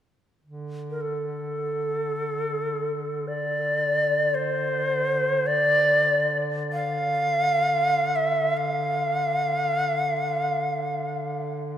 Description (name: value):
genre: caucasian folk, Caucasian lament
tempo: free time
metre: none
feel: none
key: D minor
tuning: A4 = 442 Hz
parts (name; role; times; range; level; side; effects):
- warm duduk; drone; 0.4-11.8 s; D3; -32 LUFS; left 1 dB; none
- bright reedy shakuhachi; melody; 0.9-11.6 s; A4 to F5; -23 LUFS; equal; none
room: wet church reverb, RT60 3.9 s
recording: minimal, uncompressed stereo recording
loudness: -22 LUFS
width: side -10 dB against mid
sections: 0.5-11.8 A section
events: none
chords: none